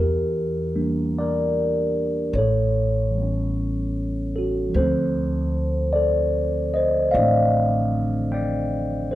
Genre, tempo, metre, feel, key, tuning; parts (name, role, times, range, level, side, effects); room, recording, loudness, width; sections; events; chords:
jazz ballad; 50 BPM; 4/4; swing 67% on 8ths; A4 = 440 Hz
mellow tine electric piano; accompaniment; 0.0-9.2 s; D3 to G5; -22 LUFS; equal; phaser
upright bass; bass; 0.0-9.2 s; A1 to E2; -25 LUFS; equal
wet studio reverb, RT60 0.7 s; heard from further back in the room; -20 LUFS; side -14 dB against mid
0.0-9.2 A section
0.0 Em7b5; 2.3 A7; 4.7 Dm7